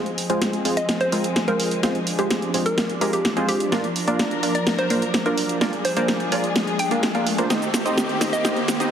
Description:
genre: EDM, festival progressive house.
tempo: 127 BPM.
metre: 4/4.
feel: straight.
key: unclear.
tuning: A4 = 440 Hz.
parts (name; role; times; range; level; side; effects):
dark studio string section; sustained chords; 0.0-8.9 s; Eb3 to Bb4; -28 LUFS; left 1 dB; none.
supersaw stab; riff; 0.0-8.9 s; Ab3 to F5; -24 LUFS; right 1 dB; low-pass filter, digital delay.
riser; sound effects; 3.3-8.9 s; none; -31 LUFS; right 1 dB; none.
house drum kit; drums; 0.1-8.9 s; hi-hat, shaker, snare drum; -24 LUFS; equal; none.
hollow square pluck; melody; 0.8-8.4 s; G4 to G5; -26 LUFS; equal; chorus, vintage 12-bit sampler grit, digital delay.
room: moderate lush hall reverb, RT60 2.3 s.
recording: heavily compressed radio sound, multiband compression, high-pass filter.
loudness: -19 LUFS.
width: side -8 dB against mid.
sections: 0.0-8.9 A section.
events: build-up 0.0-8.9; drum fill 0.0-8.9; filter sweep on supersaw synth 0.0-8.9; riser 3.3-8.9.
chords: 0.0 Fm; 7.5 Cm.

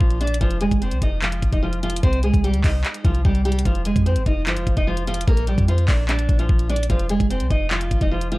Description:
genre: hip hop, trap.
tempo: 148 BPM.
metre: 4/4.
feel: half-time.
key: F dorian.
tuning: A4 = 435 Hz.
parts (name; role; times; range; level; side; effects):
picked steel-string acoustic guitar; melody; 0.0-8.4 s; F3 to Eb5; -24 LUFS; right 1 dB; low-pass filter, analog delay.
clean 808-style bass; bass; 0.0-8.4 s; F1 to F2; -21 LUFS; equal; none.
trap drum kit; drums; 0.0-8.4 s; handclaps, hi-hat, kick drum; -21 LUFS; equal; none.
room: small room ambience.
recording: dry, gritty hardware recording.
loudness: -18 LUFS.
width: side -20 dB against mid.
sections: 0.0-8.4 A section.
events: none.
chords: 0.4 N.C.; 2.0 Cm; 3.7 N.C.; 5.3 Bb; 6.9 Fm.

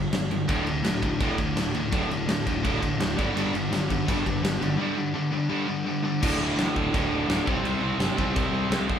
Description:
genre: punk rock.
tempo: 168 BPM.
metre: 4/4.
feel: straight.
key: unclear.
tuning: A4 = 440 Hz.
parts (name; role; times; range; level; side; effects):
distorted electric guitar; riff; 0.0-9.0 s; D2 to C4; -30 LUFS; left 6 dB; distortion.
distorted electric guitar; riff; 0.0-9.0 s; D2 to C4; -30 LUFS; right 6 dB; distortion.
fuzz picked electric bass; bass; 0.0-8.9 s; D1 to G2; -33 LUFS; equal; overdrive.
big rock drum kit; drums; 0.1-9.0 s; crash cymbal, kick drum, snare drum; -28 LUFS; equal; none.
biting overdriven guitar; riff; 0.5-9.0 s; D2 to C4; -30 LUFS; equal; none.
room: light reverb.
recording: band playing live in one room.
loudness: -23 LUFS.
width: side -8 dB against mid.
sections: 0.0-6.2 A section; 6.2-9.0 B section.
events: none.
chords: 0.5 D5; 3.2 G5; 6.2 D5; 7.5 C5.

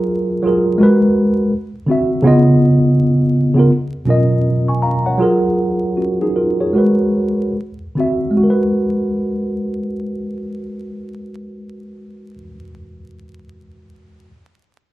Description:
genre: R&B.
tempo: 70-83 BPM.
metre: 4/4.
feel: swing 63% on 16ths.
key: G# dorian.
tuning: A4 = 440 Hz.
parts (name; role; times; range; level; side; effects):
tine electric piano; accompaniment; 0.0-14.3 s; B2 to C#6; -14 LUFS; equal; medium stereo tremolo.
room: moderate large studio reverb, RT60 0.9 s.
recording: band playing live in one room, vinyl crackle, lossy compression artefacts.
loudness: -13 LUFS.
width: side -16 dB against mid.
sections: 0.0-8.4 A section; 8.4-11.8 B section.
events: slowing down 2.2-8.4.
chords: 0.0 F#maj9; 0.8 G#m9; 1.5 D9; 2.2 C#9; 3.7 Bmaj9#11; 5.2 F#maj9; 6.7 G#m9; 7.6 D9; 8.4 G#m9.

